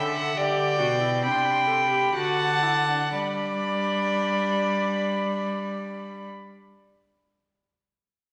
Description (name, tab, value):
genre	classical, baroque-style fugue for string quartet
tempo	58-73 BPM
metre	3/4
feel	straight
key	G major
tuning	A4 = 440 Hz
part	warm violin	melody	0.0-6.3 s	F#5 to C6	-31 LUFS	equal	none
part	rich violin	second line	0.0-6.3 s	D5 to G5	-28 LUFS	equal	none
part	warm viola	accompaniment	0.0-6.3 s	D4 to A4	-35 LUFS	equal	none
part	warm cello	bass	0.0-6.3 s	B2 to G3	-32 LUFS	equal	none
room	wet recital hall reverb, RT60 1.5 s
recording	none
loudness	-25 LUFS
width	mono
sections	0.0-3.1 A section; 3.1-6.2 B section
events	slowing down 0.0-3.1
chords	0.4 D7sus4; 2.2 D; 3.1 G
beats	| 0.37 1.23 2.15 | 3.15 4.18 5.21